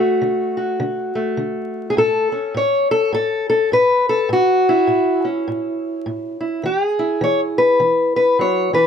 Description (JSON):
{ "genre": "acoustic country blues, solo or duo", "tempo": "103 BPM", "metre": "4/4", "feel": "swing 60% on 8ths", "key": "A major", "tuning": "A4 = 440 Hz", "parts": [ { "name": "fingerpicked steel-string acoustic guitar", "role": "solo", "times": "0.0-8.9 s", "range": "A2 to C#5", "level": "-16 LUFS", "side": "left 1 dB", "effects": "none" } ], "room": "light reverb", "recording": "close, detailed microphones, vinyl crackle", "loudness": "-16 LUFS", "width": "side -7 dB against mid", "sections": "0.0-8.9 A section", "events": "none", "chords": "0.0 D; 2.0 A; 6.6 E" }